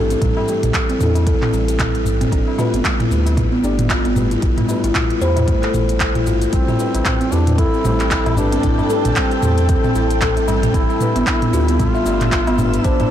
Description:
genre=organic downtempo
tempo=114 BPM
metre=4/4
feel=swing 58% on 16ths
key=A minor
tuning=A4 = 442 Hz
part: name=deep mellow chord stab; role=accompaniment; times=0.0-13.1 s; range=E3 to B5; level=-28 LUFS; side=left 1 dB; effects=chorus, sidechain pumping, digital delay
part: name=buzzing kalimba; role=arpeggios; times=0.0-13.1 s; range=G3 to E5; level=-20 LUFS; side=left 1 dB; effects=digital delay
part: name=warm sub bass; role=bass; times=0.0-12.9 s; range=G1 to E2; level=-20 LUFS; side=equal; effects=transformer saturation, sidechain pumping
part: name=afro-pop drum kit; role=drums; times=0.1-13.1 s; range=cabasa, handclaps, hi-hat, toms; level=-21 LUFS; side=equal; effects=soft clipping on snare
part: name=electronic kick drum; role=drums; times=0.2-13.0 s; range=none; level=-20 LUFS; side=equal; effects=none
part: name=tabla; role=percussion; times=0.4-13.1 s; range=none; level=-28 LUFS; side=left 2 dB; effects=none
part: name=warm duduk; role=melody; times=6.5-13.1 s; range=C4 to F4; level=-23 LUFS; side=equal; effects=ping-pong delay
part: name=granular cloud pad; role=sustained chords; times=7.4-13.1 s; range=A4 to E6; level=-26 LUFS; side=equal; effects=built-in reverb, sidechain pumping
room=light reverb, digital ambience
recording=blown-out, overdriven recording, overdrive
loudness=-14 LUFS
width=side -10 dB against mid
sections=0.0-6.5 A section; 6.5-13.1 B section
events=none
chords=0.0 Am7; 2.3 G13; 4.4 Fmaj7/A (rootless); 6.5 Am7; 10.7 G13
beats=| 0.22 0.74 1.27 1.79 | 2.32 2.85 3.37 3.90 | 4.43 4.95 5.48 6.00 | 6.53 7.06 7.58 8.11 | 8.64 9.16 9.69 10.22 | 10.74 11.27 11.79 12.32 | 12.85

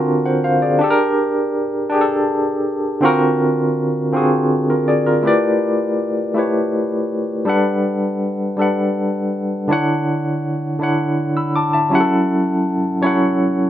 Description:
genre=R&B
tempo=54 BPM (dotted quarters)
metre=6/8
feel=straight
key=D major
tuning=A4 = 443 Hz
part: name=barky tine electric piano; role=solo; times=0.0-13.7 s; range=D3 to E6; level=-15 LUFS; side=equal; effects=medium tremolo
room=wet studio ambience, RT60 0.5 s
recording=band playing live in one room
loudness=-15 LUFS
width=side -11 dB against mid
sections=0.0-5.2 A section; 5.2-13.7 B section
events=none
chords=0.0 D7alt; 0.8 Gm; 3.0 D7alt; 5.2 A7sus4; 7.5 Gmaj9; 9.7 Dmaj7; 11.9 F#m7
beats=| 0.80 1.91 | 3.02 4.13 | 5.24 6.35 | 7.46 8.57 | 9.68 10.79 | 11.91 13.02

